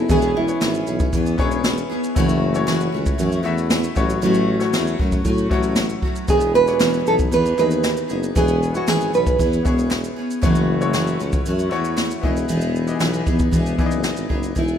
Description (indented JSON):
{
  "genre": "acoustic pop",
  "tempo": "116 BPM",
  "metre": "4/4",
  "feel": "straight",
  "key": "E major",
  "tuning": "A4 = 440 Hz",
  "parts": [
    { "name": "nylon-string guitar", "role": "melody", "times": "0.0-1.1, 6.3-10.1, 14.6-14.8 s", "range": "E4 to B4", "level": "-19 LUFS", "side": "right 3 dB", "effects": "none" },
    { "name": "clear grand piano", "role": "accompaniment", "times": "0.0-14.6 s", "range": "G#3 to E5", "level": "-28 LUFS", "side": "left 6 dB", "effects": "none" },
    { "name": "picked steel-string acoustic guitar", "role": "accompaniment", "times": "0.0-14.8 s", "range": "F#2 to G#4", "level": "-22 LUFS", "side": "equal", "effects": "double-tracked left and right" },
    { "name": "mellow tuba", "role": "bass", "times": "0.0-14.8 s", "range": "E1 to A2", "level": "-24 LUFS", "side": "equal", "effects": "none" },
    { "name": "jazz brush drum kit", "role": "drums", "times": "0.1-14.8 s", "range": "kick drum, shaker, snare drum", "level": "-22 LUFS", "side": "equal", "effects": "none" },
    { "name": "group handclap", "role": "percussion", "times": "0.6-14.2 s", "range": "none", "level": "-39 LUFS", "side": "right 3 dB", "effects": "none" }
  ],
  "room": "light reverb, studio ambience",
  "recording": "rough home demo mix",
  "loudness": "-17 LUFS",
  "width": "side -8 dB against mid",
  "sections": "0.0-14.6 A section",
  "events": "none",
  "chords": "0.1 C#m7/E; 2.2 F#m7; 4.0 A6; 6.3 Emaj7; 8.4 C#m7/E; 10.4 F#m7; 12.2 Emaj7",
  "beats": "| 0.10 0.61 1.13 1.64 | 2.16 2.68 3.19 3.71 | 4.22 4.74 5.26 5.77 | 6.29 6.81 7.32 7.84 | 8.36 8.87 9.39 9.91 | 10.43 10.94 11.46 11.98 | 12.49 13.01 13.53 14.05 | 14.57"
}